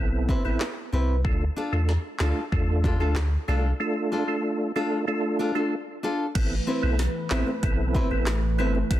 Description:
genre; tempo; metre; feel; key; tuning
dancehall; 94 BPM; 4/4; straight; D dorian; A4 = 439 Hz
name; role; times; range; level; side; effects
percussive tonewheel organ; accompaniment; 0.0-9.0 s; A3 to A4; -29 LUFS; right 1 dB; chorus vibrato, fast rotary speaker, sidechain pumping
punchy sub bass; bass; 0.0-9.0 s; G1 to E2; -24 LUFS; equal; none
nylon-string guitar; arpeggios; 0.3-8.8 s; C4 to B4; -30 LUFS; left 1 dB; none
afro-pop drum kit; drums; 0.3-9.0 s; crash cymbal, handclaps, hi-hat, kick drum, rim click, snare drum; -28 LUFS; equal; soft clipping on snare
lush unison pad; sustained chords; 6.4-9.0 s; E3 to B4; -32 LUFS; right 2 dB; chorus, sidechain pumping
room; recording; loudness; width
light reverb; dense, heavily limited modern master; -23 LUFS; side -13 dB against mid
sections
0.0-6.4 A section; 6.4-9.0 B section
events
none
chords
0.0 Amadd9; 1.2 Dm; 6.4 Amadd9

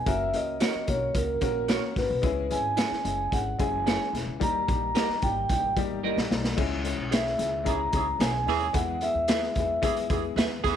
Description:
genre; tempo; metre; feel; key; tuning
uptempo 1960s-style soul; 110 BPM; 4/4; straight; unclear; A4 = 441 Hz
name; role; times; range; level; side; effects
vibraphone with soft mallets; melody; 0.0-10.1 s; A#4 to A#5; -28 LUFS; right 1 dB; none
upright bass; bass; 0.0-10.8 s; E1 to E2; -34 LUFS; equal; none
warm upright piano; accompaniment; 0.1-10.8 s; G3 to A#4; -32 LUFS; left 10 dB; none
raw garage drum kit; drums; 0.1-10.8 s; crash cymbal, hi-hat, kick drum, snare drum; -29 LUFS; equal; none
semi-hollow electric guitar; stabs; 0.6-10.5 s; E4 to E5; -34 LUFS; right 10 dB; analog chorus, slapback echo
warm horn section; second line; 7.7-10.8 s; E3 to G#4; -31 LUFS; right 13 dB; none
room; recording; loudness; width
light reverb; 1960s-style stereo with parts hard left and right; -24 LUFS; side -9 dB against mid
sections
0.0-6.6 A section; 6.6-10.8 B section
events
drum fill 6.0-6.6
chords
0.1 F#; 2.2 C#m; 4.4 D#; 6.6 C#m; 8.8 E

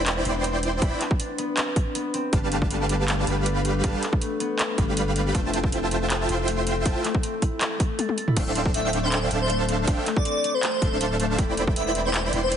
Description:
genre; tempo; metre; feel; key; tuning
future bass; 159 BPM; 4/4; swing 54% on 16ths, half-time; C major; A4 = 439 Hz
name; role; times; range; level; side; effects
concert harp; arpeggios; 0.0-12.6 s; A3 to A4; -29 LUFS; left 3 dB; sidechain pumping, ping-pong delay
supersaw chords; riff; 0.0-12.6 s; G3 to C6; -27 LUFS; right 2 dB; sidechain pumping
saturated sub bass; bass; 0.0-12.6 s; D1 to G1; -28 LUFS; equal; sidechain pumping
pop drum kit; drums; 0.1-12.6 s; crash cymbal, handclaps, hi-hat, toms; -28 LUFS; equal; none
electronic kick drum; drums; 0.8-11.7 s; none; -24 LUFS; equal; none
airy dreamy lead; melody; 8.7-12.6 s; C5 to E5; -27 LUFS; equal; chorus, sidechain pumping
room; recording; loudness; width
light reverb, digital ambience; heavily compressed radio sound, multiband compression, nothing above 10.5 kHz; -22 LUFS; side -8 dB against mid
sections
0.0-12.6 A section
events
drum fill 8.0-8.4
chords
0.0 Cmaj9/E; 2.3 G9; 5.3 Fmaj9; 8.4 Dm11; 11.4 Cmaj9/E

